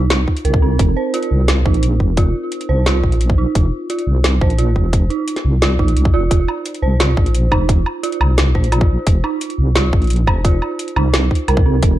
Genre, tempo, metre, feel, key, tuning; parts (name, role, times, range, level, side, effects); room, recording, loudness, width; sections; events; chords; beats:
half-time drum and bass; 174 BPM; 4/4; half-time; A4 = 439 Hz
dark detuned synth bell; arpeggios; 0.0-12.0 s; C4 to C5; -21 LUFS; right 4 dB; chorus, tremolo, digital delay
deep soft wobble bass; bass; 0.0-12.0 s; F1 to C2; -15 LUFS; equal; chorus
drum and bass drum kit; drums; 0.1-11.9 s; hi-hat, snare drum, woodblock; -20 LUFS; equal
electronic kick drum; drums; 0.3-11.9 s; -15 LUFS; equal
light reverb, digital ambience; dark, warm production; -13 LUFS; side -14 dB against mid
0.0-12.0 A section
0.0 F5
0.10 0.45 | 0.79 1.14 1.48 1.83 | 2.17 2.52 2.86 3.21 | 3.55 3.90 4.24 4.59 | 4.93 5.28 5.62 5.97 | 6.31 6.66 7.00 7.34 | 7.69 8.04 8.38 8.72 | 9.07 9.41 9.76 10.10 | 10.45 10.79 11.14 11.48 | 11.83